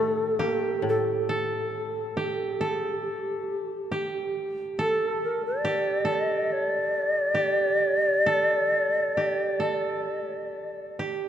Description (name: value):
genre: japanese traditional, Japanese chamber music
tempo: 68 BPM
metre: 4/4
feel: rubato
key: unclear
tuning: A4 = 440 Hz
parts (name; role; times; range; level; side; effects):
- hollow shakuhachi; melody; 0.0-11.0 s; A4 to Eb5; -26 LUFS; left 1 dB; none
- koto; second line; 0.0-11.3 s; G4 to A4; -29 LUFS; right 3 dB; none
- koto; accompaniment; 0.0-3.5 s; A2 to Bb3; -33 LUFS; left 4 dB; none
room: wet cathedral reverb, RT60 4.3 s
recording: dark, warm production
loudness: -24 LUFS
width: side -10 dB against mid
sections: 0.0-11.3 A section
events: none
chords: none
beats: 0.39 | 1.28 2.16 3.04 3.92 | 4.78 5.64 6.50 7.37 | 8.26 9.14 10.04 10.98